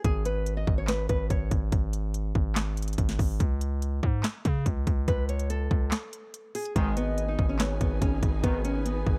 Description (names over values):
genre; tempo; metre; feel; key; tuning
hip hop, trap; 143 BPM; 4/4; half-time; unclear; A4 = 441 Hz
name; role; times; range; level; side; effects
nylon-string guitar; melody; 0.0-1.5, 5.1-9.2 s; G#3 to D#5; -35 LUFS; equal; slapback echo
distorted 808-style bass; bass; 0.0-9.2 s; G#1 to C#3; -31 LUFS; equal; distortion
trap drum kit; drums; 0.0-9.2 s; handclaps, hi-hat, kick drum, snare drum; -30 LUFS; equal; none
soft octave-layered synth lead; second line; 6.8-9.2 s; B4 to D#5; -39 LUFS; equal; chorus, phaser, slapback echo
warm symphonic string section; sustained chords; 6.8-9.2 s; D#4 to G#5; -41 LUFS; equal; none
clear brass ensemble; stabs; 6.8-8.7 s; G#2 to D#3; -41 LUFS; equal; none
room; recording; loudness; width
small room ambience; dark, warm production; -28 LUFS; mono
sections
0.0-6.8 A section; 6.8-9.2 B section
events
break 5.9-6.8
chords
0.0 N.C.; 3.4 C#5; 6.8 G#m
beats
| 0.04 0.47 0.88 1.30 | 1.72 2.14 2.56 2.98 | 3.40 3.82 4.24 4.66 | 5.08 5.50 5.92 6.34 | 6.76 7.18 7.60 8.02 | 8.44 8.86